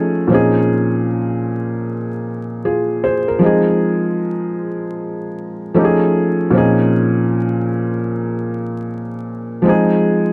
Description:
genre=hip hop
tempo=77 BPM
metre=4/4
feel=swing 62% on 16ths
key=unclear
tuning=A4 = 439 Hz
part: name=felt-muted upright piano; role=solo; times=0.0-10.3 s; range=Bb2 to C5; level=-17 LUFS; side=equal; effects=low-pass filter
room=moderate studio reverb, RT60 0.6 s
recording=vinyl crackle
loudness=-17 LUFS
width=mono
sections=0.0-10.3 A section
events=none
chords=0.3 Bbm11; 3.4 Fm7; 5.8 F7alt; 6.5 Bbm11; 9.7 Fm7

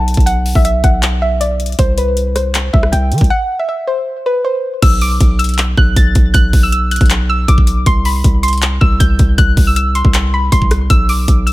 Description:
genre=hip hop, trap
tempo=158 BPM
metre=4/4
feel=half-time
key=B phrygian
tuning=A4 = 441 Hz
part: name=soft round pluck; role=melody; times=0.0-11.5 s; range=B4 to A6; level=-17 LUFS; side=equal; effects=chorus, ping-pong delay
part: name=hard-hitting 808-style bass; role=bass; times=0.0-11.5 s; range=B1 to E3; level=-14 LUFS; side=equal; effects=none
part: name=trap drum kit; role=drums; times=0.1-11.5 s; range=crash cymbal, handclaps, hi-hat, kick drum, rim click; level=-13 LUFS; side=equal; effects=none
room=digital ambience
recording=none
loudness=-10 LUFS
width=side -18 dB against mid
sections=0.0-4.8 A section; 4.8-11.5 B section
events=break 3.3-4.8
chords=0.0 Bsus4; 1.8 C; 4.8 Bsus4; 7.9 C5; 10.9 Bmadd11

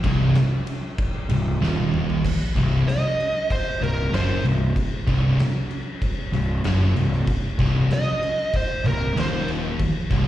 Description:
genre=stoner and doom metal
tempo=95 BPM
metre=4/4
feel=straight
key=C minor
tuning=A4 = 441 Hz
part: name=distorted electric guitar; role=riff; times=0.0-10.3 s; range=C2 to F#2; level=-33 LUFS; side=equal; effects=overdrive, slapback echo
part: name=thick fuzz guitar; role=riff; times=0.0-10.3 s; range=C2 to F#2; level=-25 LUFS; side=left 4 dB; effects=distortion, slapback echo
part: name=thick fuzz guitar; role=riff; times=0.0-10.3 s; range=C2 to F#2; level=-25 LUFS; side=right 4 dB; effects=distortion, slapback echo
part: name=fuzz picked electric bass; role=bass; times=0.0-10.3 s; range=C1 to F#1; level=-25 LUFS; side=equal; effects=overdrive, tube saturation
part: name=oversized low-tuned drum kit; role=drums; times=0.0-10.3 s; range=crash cymbal, kick drum, ride cymbal, snare drum, toms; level=-26 LUFS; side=equal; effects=none
part: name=fuzz lead guitar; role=melody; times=2.9-9.5 s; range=Bb4 to Eb5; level=-25 LUFS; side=right 2 dB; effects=wah, distortion, slapback echo
room=moderate club reverb, RT60 0.8 s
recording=live gig heard through the venue's PA, recital hall reverb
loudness=-20 LUFS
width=side -13 dB against mid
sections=0.0-2.2 A section; 2.2-10.3 B section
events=drum fill 1.6-2.2; lead electric guitar solo 2.2-10.3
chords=0.0 Cm

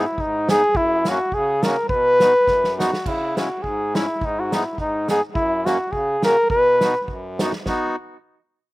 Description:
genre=alpine folk, alpine dance band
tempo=104 BPM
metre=2/4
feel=swing 54% on 8ths, rubato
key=B major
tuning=A4 = 441 Hz
part: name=mellow flugelhorn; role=melody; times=0.0-7.0 s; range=D#4 to B4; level=-18 LUFS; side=equal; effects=slapback echo
part: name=accordion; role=accompaniment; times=0.0-8.0 s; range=F#2 to G#4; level=-26 LUFS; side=equal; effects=slapback echo
part: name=unplugged drum kit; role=drums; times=0.2-7.8 s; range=crash cymbal, hi-hat, kick drum, snare drum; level=-26 LUFS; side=right 1 dB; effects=slapback echo
room=little or no reverb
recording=recorded outdoors, with no room sound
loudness=-17 LUFS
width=side -19 dB against mid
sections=0.0-3.1 A section; 3.1-7.7 B section; 7.7-8.7 C section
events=drum fill 2.5-3.1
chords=0.0 G#m; 0.8 F#; 1.9 B; 3.1 C#m; 4.2 G#m; 5.4 F#; 6.5 B

